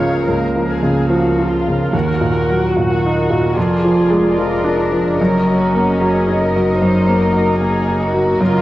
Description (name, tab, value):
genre	classical, romantic movement for piano and orchestra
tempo	74 BPM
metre	4/4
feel	rubato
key	unclear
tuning	A4 = 440 Hz
part	bright grand piano	melody	0.0-8.6 s	Db2 to F4	-15 LUFS	equal	none
part	warm chamber violin section	second line	0.0-8.6 s	F4 to Db5	-24 LUFS	left 4 dB	none
part	dark symphonic viola section	accompaniment	0.0-8.6 s	Bb4 to Gb5	-24 LUFS	left 1 dB	none
part	dark symphonic double bass section	bass	0.0-8.6 s	F1 to Eb2	-24 LUFS	right 1 dB	none
part	warm symphonic cello section	bass	0.0-8.6 s	Ab3 to Bb4	-23 LUFS	right 1 dB	none
room	moderate scoring stage reverb, RT60 1.6 s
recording	worn, warbling old tape, cassette tape, warbly pitch drift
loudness	-13 LUFS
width	side -15 dB against mid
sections	0.0-8.6 A section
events	none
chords	0.0 Bbm/Db; 1.9 Ebm; 3.6 Bb7/F; 5.2 Ebm/Gb